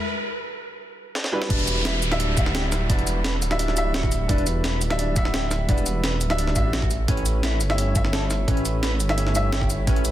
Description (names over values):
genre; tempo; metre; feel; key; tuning
liquid drum and bass; 172 BPM; 4/4; straight; E minor; A4 = 440 Hz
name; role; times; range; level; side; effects
clear baby grand piano; accompaniment; 0.0-10.1 s; G3 to F#5; -27 LUFS; equal; tape echo
riser and downlifter; sound effects; 0.0-4.3 s; none; -31 LUFS; right 1 dB; none
breakbeat sampler-style drum kit; drums; 1.2-10.1 s; crash cymbal, hi-hat, shaker, snare drum; -28 LUFS; equal; high-pass filter on hats, studio reverb, high-pass filter on snare, high-pass filter on cymbals, high-pass filter on perc
mellow electric guitar; arpeggios; 1.5-10.0 s; C#4 to B4; -32 LUFS; left 2 dB; lush chorus, tape echo
dark detuned saw bass; bass; 1.5-10.1 s; D1 to A1; -24 LUFS; equal; none
electronic kick drum; drums; 1.5-9.9 s; none; -23 LUFS; equal; studio reverb
room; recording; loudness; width
little or no reverb; dense, heavily limited modern master; -20 LUFS; side -13 dB against mid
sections
0.0-1.5 A section; 1.5-10.1 B section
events
build-up 0.0-1.5; break 0.1-1.5; drum fill 1.2-1.5; drop 1.5-10.1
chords
0.0 Em9; 6.9 A9